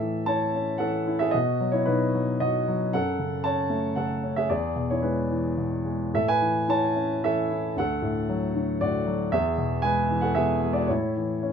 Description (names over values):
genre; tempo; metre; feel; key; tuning
classical, lyrical solo piano; 113 BPM; 3/4; uneven beats, rubato; A major; A4 = 440 Hz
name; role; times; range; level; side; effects
warm baby grand piano; solo; 0.0-11.5 s; D2 to A5; -23 LUFS; equal; none
room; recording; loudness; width
light reverb; minimal, uncompressed stereo recording; -23 LUFS; side -7 dB against mid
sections
0.0-11.5 A section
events
none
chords
0.0 A; 1.3 B; 2.9 F#m; 4.5 E; 6.1 Aadd9; 7.8 D; 9.3 Eadd9; 10.9 A